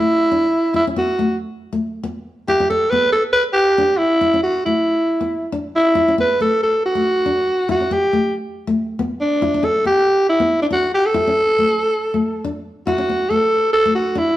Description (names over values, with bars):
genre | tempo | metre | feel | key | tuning
highlife | 139 BPM | 4/4 | swing 53% on 16ths | D major | A4 = 440 Hz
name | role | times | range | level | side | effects
breathy alto saxophone | melody | 0.0-14.4 s | D4 to B4 | -15 LUFS | equal | none
nylon-string guitar | accompaniment | 0.0-14.3 s | A3 to E4 | -23 LUFS | left 3 dB | none
room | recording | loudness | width
moderate large studio reverb, RT60 1.3 s | band playing live in one room | -15 LUFS | side -14 dB against mid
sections
0.0-12.9 A section; 12.9-14.4 B section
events
none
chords
0.0 Dsus2; 0.8 Esus2 (rootless); 2.5 G; 4.2 Asus2; 7.7 Em (rootless); 9.4 G; 11.2 A5; 12.9 D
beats
0.32 | 0.76 1.19 1.62 2.06 | 2.49 2.93 3.36 3.79 | 4.23 4.66 5.09 5.53 | 5.96 6.39 6.83 7.26 | 7.69 8.12 8.56 8.99 | 9.42 9.86 10.29 10.72 | 11.15 11.59 12.02 12.45 | 12.88 13.31 13.74 14.18